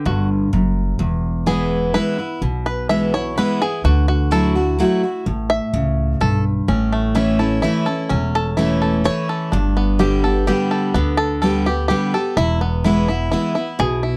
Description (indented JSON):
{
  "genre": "bluegrass",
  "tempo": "127 BPM",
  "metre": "3/4",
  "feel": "straight",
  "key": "A mixolydian",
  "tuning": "A4 = 439 Hz",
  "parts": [
    { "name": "bluegrass banjo", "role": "melody", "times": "0.0-14.2 s", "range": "A3 to E5", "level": "-25 LUFS", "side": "equal", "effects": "none" },
    { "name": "picked steel-string acoustic guitar", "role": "accompaniment", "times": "0.0-14.2 s", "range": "E2 to G4", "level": "-21 LUFS", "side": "equal", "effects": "none" },
    { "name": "upright bass", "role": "bass", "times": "0.1-14.2 s", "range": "E1 to D2", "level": "-23 LUFS", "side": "equal", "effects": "none" }
  ],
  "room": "light reverb",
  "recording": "dry, close 1970s-style studio recording",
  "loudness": "-19 LUFS",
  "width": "mono",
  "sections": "0.0-14.2 A section",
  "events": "five-string banjo solo 0.0-14.2",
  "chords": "0.0 G5; 1.0 E; 3.8 Dadd9; 6.7 A; 9.5 G; 12.4 E",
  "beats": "0.06 0.53 | 1.00 1.48 1.95 | 2.42 2.90 3.37 | 3.84 4.32 4.79 | 5.26 5.74 6.21 | 6.68 7.16 7.63 | 8.11 8.58 9.05 | 9.53 10.00 10.47 | 10.95 11.42 11.89 | 12.37 12.84 13.31 | 13.79"
}